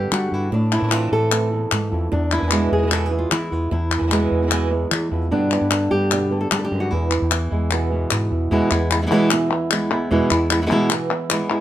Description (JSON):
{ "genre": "flamenco", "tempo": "150 BPM", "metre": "4/4", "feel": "straight", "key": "unclear", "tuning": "A4 = 441 Hz", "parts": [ { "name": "flamenco guitar", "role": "melody", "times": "0.0-11.6 s", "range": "E2 to A4", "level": "-20 LUFS", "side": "equal", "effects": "none" }, { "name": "flamenco guitar", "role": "stabs", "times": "0.0-11.6 s", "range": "B2 to G4", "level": "-27 LUFS", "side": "right 6 dB", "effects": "none" }, { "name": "mellow fretless electric bass", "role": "bass", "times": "0.0-11.4 s", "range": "E2 to G3", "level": "-23 LUFS", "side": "equal", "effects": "none" }, { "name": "palmas hand claps", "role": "percussion", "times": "0.1-11.6 s", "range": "none", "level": "-23 LUFS", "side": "left 6 dB", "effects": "none" } ], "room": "light reverb", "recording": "minimal, uncompressed stereo recording", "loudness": "-17 LUFS", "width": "side -12 dB against mid", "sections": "0.0-8.5 A section; 8.5-11.6 B section", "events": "none", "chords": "0.0 G; 0.5 Am; 2.1 E; 5.3 G; 6.9 E", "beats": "0.12 | 0.52 0.92 1.32 1.72 | 2.12 2.52 2.92 3.32 | 3.72 4.12 4.52 4.92 | 5.32 5.72 6.12 6.52 | 6.92 7.32 7.71 8.12 | 8.51 8.91 9.31 9.71 | 10.11 10.51 10.91 11.31" }